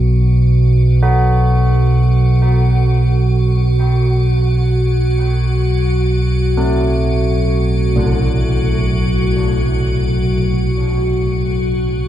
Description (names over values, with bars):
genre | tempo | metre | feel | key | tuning
dark ambient drone | free time | none | none | unclear | A4 = 441 Hz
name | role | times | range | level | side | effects
deep rumbling drone | drone | 0.0-12.1 s | B1 to B2 | -14 LUFS | right 1 dB | built-in reverb
icy glass pad | texture | 0.0-12.1 s | F#3 to F#4 | -20 LUFS | left 1 dB | chorus, built-in reverb
carillon bells | arpeggios | 1.0-12.1 s | A2 to F#4 | -23 LUFS | equal | dub echo
room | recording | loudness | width
light reverb, studio reverb | echo-heavy mix | -12 LUFS | side -12 dB against mid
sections
0.0-12.1 A section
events
none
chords
0.0 B5